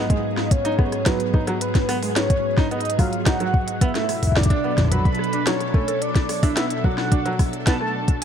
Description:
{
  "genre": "IDM",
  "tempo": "109 BPM",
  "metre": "4/4",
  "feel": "straight",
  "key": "unclear",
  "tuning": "A4 = 440 Hz",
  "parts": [
    { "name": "warm velvety synth lead", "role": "melody", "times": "0.0-8.2 s", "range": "B4 to B5", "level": "-25 LUFS", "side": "equal", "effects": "chorus, tremolo, dub echo" },
    { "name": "soft string machine", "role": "sustained chords", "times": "0.0-8.2 s", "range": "G#2 to A4", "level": "-27 LUFS", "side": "equal", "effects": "ensemble chorus, vintage 12-bit sampler grit, sidechain pumping" },
    { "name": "felt-muted upright piano", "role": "arpeggios", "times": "0.0-7.9 s", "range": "F#3 to A4", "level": "-28 LUFS", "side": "right 3 dB", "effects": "tape echo" },
    { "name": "electronic kick drum", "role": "drums", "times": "0.1-8.2 s", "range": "none", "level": "-19 LUFS", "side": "equal", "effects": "none" },
    { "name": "organic electronic drum kit", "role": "drums", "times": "0.1-8.2 s", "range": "hi-hat, rim click, snare drum", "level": "-27 LUFS", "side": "equal", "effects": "tape echo" }
  ],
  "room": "light reverb",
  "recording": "echo-heavy mix",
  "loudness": "-18 LUFS",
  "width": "side -8 dB against mid",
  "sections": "0.0-8.2 A section",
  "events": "none",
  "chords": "0.0 G#m7; 3.8 Bm7"
}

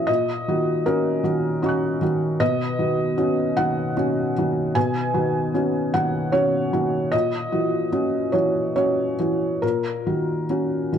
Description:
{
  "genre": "neoclassical minimalist piano",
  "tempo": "69-79 BPM",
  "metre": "3/4",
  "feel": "rubato",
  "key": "B major",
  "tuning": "A4 = 444 Hz",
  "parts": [
    { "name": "felt-muted upright piano", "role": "solo", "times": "0.0-11.0 s", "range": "A#2 to F#6", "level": "-20 LUFS", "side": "equal", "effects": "none" }
  ],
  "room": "moderate spring reverb, RT60 1.4 s",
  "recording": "dark, warm production",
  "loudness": "-20 LUFS",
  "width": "side -8 dB against mid",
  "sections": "0.0-11.0 A section",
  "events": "none",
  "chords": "0.1 D#m7/A#; 2.4 Badd9; 7.1 F#7/A#; 9.6 D#m7/A#"
}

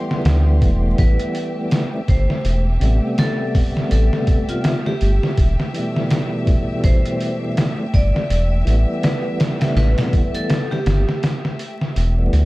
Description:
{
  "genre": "trip hop",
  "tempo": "82 BPM",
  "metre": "4/4",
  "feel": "swing 58% on 16ths",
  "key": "A minor",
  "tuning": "A4 = 440 Hz",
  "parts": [
    { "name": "tonewheel organ", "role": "accompaniment", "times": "0.0-12.5 s", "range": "B2 to C4", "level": "-24 LUFS", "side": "equal", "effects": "overdrive, fast rotary speaker, tremolo" },
    { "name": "rich studio string section", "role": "sustained chords", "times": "0.0-12.5 s", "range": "A3 to C6", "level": "-30 LUFS", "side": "equal", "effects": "none" },
    { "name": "trip hop sampler-style drum kit", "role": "drums", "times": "0.1-12.5 s", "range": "hi-hat, kick drum, snare drum", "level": "-19 LUFS", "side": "equal", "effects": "none" },
    { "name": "round analog bass", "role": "bass", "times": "0.3-12.5 s", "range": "E1 to D2", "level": "-16 LUFS", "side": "equal", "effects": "none" },
    { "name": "vibraphone with hard mallets", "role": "melody", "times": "1.0-11.2 s", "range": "F4 to D5", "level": "-28 LUFS", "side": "left 1 dB", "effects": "tape echo" }
  ],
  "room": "little or no reverb",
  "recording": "dark, warm production, vinyl crackle",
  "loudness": "-16 LUFS",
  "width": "side -20 dB against mid",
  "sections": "0.0-12.5 A section",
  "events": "none",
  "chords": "0.0 Am7"
}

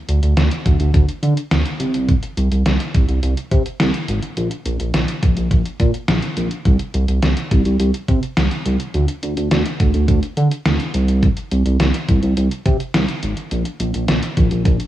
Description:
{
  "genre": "synth-pop",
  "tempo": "105 BPM",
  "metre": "4/4",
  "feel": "straight",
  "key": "unclear",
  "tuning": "A4 = 440 Hz",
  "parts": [
    { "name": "smooth synth bass", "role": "bass", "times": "0.1-14.8 s", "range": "Ab1 to D3", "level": "-17 LUFS", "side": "right 1 dB", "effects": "none" },
    { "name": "detuned 8-bit digital drum machine", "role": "drums", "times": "0.1-14.9 s", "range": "hi-hat, kick drum, snare drum", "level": "-18 LUFS", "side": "equal", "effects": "cassette tape" }
  ],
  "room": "light reverb",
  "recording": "home recording on cassette",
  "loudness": "-15 LUFS",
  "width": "side -13 dB against mid",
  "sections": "0.0-14.9 A section",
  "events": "none",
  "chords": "none"
}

